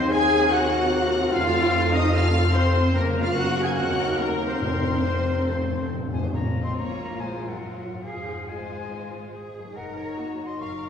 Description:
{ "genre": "classical", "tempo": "138-149 BPM", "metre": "4/4", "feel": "rubato", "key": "Bb minor", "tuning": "A4 = 439 Hz", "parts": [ { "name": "warm symphonic violin section", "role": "melody", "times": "0.0-10.7 s", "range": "Ab4 to Ab6", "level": "-34 LUFS", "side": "left 2 dB", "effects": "none" }, { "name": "clear oboe", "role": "second line", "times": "0.0-5.9 s", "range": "Bb4 to Ab5", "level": "-34 LUFS", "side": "right 1 dB", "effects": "none" }, { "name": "silver concert flute", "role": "second line", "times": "0.0-10.9 s", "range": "Bb4 to Db6", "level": "-33 LUFS", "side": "left 3 dB", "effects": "none" }, { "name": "warm symphonic violin section", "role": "second line", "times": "0.0-10.9 s", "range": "Ab4 to Ab5", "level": "-35 LUFS", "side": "left 1 dB", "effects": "none" }, { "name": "clear symphonic viola section", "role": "accompaniment", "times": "0.0-10.5 s", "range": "F3 to Bb4", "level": "-33 LUFS", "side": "equal", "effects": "none" }, { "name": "bright trombone section", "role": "sustained chords", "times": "0.0-6.1 s", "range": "C3 to Bb3", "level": "-34 LUFS", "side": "right 2 dB", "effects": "none" }, { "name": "dark French horn section", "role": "sustained chords", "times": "0.0-10.9 s", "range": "F3 to Ab4", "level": "-30 LUFS", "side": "left 2 dB", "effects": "none" }, { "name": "concert harp", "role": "arpeggios", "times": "0.0-10.9 s", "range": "F2 to C6", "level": "-33 LUFS", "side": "left 3 dB", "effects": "none" }, { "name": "clear trumpet section", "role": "stabs", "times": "0.0-5.9 s", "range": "Bb4 to Ab5", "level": "-30 LUFS", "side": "left 1 dB", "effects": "none" }, { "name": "rich symphonic double bass section", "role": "bass", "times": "0.0-10.9 s", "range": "F1 to Gb2", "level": "-28 LUFS", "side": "equal", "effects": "none" }, { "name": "warm symphonic cello section", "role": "bass", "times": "0.0-10.9 s", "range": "Bb3 to Bb4", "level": "-30 LUFS", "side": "right 1 dB", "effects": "none" }, { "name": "warm tuba", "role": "bass", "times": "0.0-6.1 s", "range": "F1 to Eb2", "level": "-32 LUFS", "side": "equal", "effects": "none" }, { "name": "timpani", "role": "percussion", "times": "4.6-6.9 s", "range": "F2 to Bb2", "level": "-30 LUFS", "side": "left 1 dB", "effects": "none" } ], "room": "wet recital hall reverb, RT60 1.6 s", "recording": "heard from further back in the room, small room ambience", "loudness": "-21 LUFS", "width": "side -7 dB against mid", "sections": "0.0-6.3 A section; 6.3-10.9 B section", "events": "timpani fill 5.5-6.3", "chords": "0.0 Cm7b5/Eb; 1.3 F; 3.0 Gbmaj7; 3.8 Cm7b5/Eb; 4.6 Fsus4; 5.5 F; 6.3 Bbm; 8.1 Fm; 9.8 Ebm/Gb" }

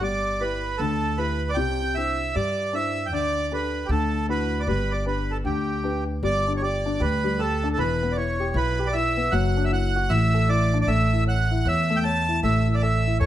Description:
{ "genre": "celtic folk", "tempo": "155 BPM", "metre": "4/4", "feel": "swing 62% on 8ths", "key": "G major", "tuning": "A4 = 440 Hz", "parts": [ { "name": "accordion", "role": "melody", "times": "0.0-13.3 s", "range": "G4 to A5", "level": "-25 LUFS", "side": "right 3 dB", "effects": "none" }, { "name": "dark baby grand piano", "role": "accompaniment", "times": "0.0-13.3 s", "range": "C3 to C#5", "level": "-28 LUFS", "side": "left 4 dB", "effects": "none" }, { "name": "upright bass", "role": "bass", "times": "0.0-13.3 s", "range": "E1 to G2", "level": "-25 LUFS", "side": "equal", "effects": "none" } ], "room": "light reverb", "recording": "close, detailed microphones", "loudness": "-21 LUFS", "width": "side -12 dB against mid", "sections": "0.0-6.2 A section; 6.2-13.3 B section", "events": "none", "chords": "0.0 G6; 1.6 Cadd9; 3.1 Dsus4; 3.9 Dadd9; 4.7 G; 6.2 G5; 7.8 Em; 9.3 Dadd9/F#; 10.9 A; 12.4 A5" }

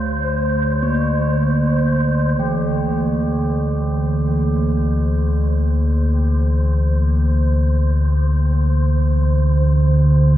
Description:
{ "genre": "dark ambient drone", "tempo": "free time", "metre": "none", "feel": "none", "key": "unclear", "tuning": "A4 = 439 Hz", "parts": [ { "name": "bronze singing bowl", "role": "arpeggios", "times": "0.0-9.9 s", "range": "D3 to Bb3", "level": "-22 LUFS", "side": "right 2 dB", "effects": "diffuse ambient delay" }, { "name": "deep rumbling drone", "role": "drone", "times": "0.0-10.4 s", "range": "D2 to D3", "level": "-16 LUFS", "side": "left 1 dB", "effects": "built-in reverb, lush chorus" }, { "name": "wind-like tuned noise texture", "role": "texture", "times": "0.0-10.4 s", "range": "C5", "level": "-27 LUFS", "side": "right 1 dB", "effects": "built-in reverb" } ], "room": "wet cathedral reverb, RT60 5.2 s", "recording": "in a vast, echoing space, nothing above 7.7 kHz", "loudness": "-15 LUFS", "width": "side -13 dB against mid", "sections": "0.0-2.4 A section; 2.4-10.4 B section", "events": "fade-in on synth texture 2.4-10.4", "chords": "0.0 Csus2/D; 2.4 Dsus2" }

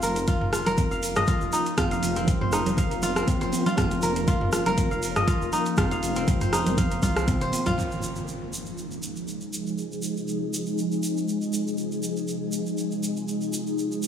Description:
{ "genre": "afro house", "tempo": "120 BPM", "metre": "4/4", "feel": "swing 54% on 16ths", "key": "F minor", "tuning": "A4 = 440 Hz", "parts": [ { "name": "ethereal airy pad", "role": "sustained chords", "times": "0.9-14.1 s", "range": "C3 to Bb4", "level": "-29 LUFS", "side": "equal", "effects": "ensemble chorus, built-in reverb, phaser, sidechain pumping" }, { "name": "kora", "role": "arpeggios", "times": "0.0-9.2 s", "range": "C4 to F5", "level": "-27 LUFS", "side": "equal", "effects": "sidechain pumping, digital delay" }, { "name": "dark detuned saw bass", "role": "bass", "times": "0.0-7.8 s", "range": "Eb1 to C2", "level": "-31 LUFS", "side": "equal", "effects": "sidechain pumping" }, { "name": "afro-pop drum kit", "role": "drums", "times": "0.0-7.9 s", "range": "crash cymbal, hi-hat, rim click, toms", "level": "-30 LUFS", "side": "right 1 dB", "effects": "low-pass filter on hats, low-pass filter on toms, low-pass filter on snare, low-pass filter on cymbals" }, { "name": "egg shaker", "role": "percussion", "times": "0.0-14.1 s", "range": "none", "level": "-36 LUFS", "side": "right 2 dB", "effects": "none" }, { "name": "electronic kick drum", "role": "drums", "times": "0.3-7.4 s", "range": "none", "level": "-25 LUFS", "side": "equal", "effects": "none" }, { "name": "congas", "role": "percussion", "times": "0.7-7.8 s", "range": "none", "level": "-31 LUFS", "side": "right 1 dB", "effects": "none" }, { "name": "impact", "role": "sound effects", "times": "7.8-9.8 s", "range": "none", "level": "-37 LUFS", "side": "equal", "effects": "none" } ], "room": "moderate lush hall reverb, RT60 2.0 s", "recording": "studio ambience", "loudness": "-23 LUFS", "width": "side -8 dB against mid", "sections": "0.0-7.8 A section; 7.8-14.1 B section", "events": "drum fill 7.0-7.8; impact 7.8-9.8; filter sweep on ambient pad 7.8-14.1", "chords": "0.0 Bbm/F; 7.8 Fm7" }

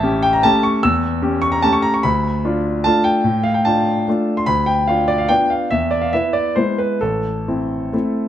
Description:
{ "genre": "classical, piano waltz", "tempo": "127-156 BPM", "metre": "3/4", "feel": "rubato", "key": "unclear", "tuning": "A4 = 440 Hz", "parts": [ { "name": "clear grand piano", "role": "solo", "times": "0.0-8.3 s", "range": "A1 to E6", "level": "-15 LUFS", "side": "equal", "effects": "none" } ], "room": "moderate recital hall reverb, RT60 1.7 s", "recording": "close, detailed microphones", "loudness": "-15 LUFS", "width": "side -11 dB against mid", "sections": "0.0-8.3 A section", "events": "none", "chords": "0.0 A7; 2.0 Dm; 4.5 Bdim/D; 5.7 E; 7.0 Am" }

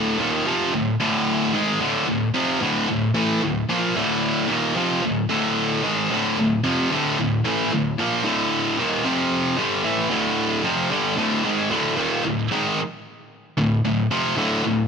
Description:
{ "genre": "metal", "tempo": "112 BPM", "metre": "4/4", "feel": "straight", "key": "D minor", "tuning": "A4 = 440 Hz", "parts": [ { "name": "high-gain distorted guitar", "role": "solo", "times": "0.0-14.9 s", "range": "D2 to Bb3", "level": "-19 LUFS", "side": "equal", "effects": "distortion" } ], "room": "light reverb, digital ambience", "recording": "rough home demo mix", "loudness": "-19 LUFS", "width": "side -6 dB against mid", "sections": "0.0-11.2 A section; 11.2-14.9 B section", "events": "none", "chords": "0.0 Dm; 9.1 F5; 9.6 Dm" }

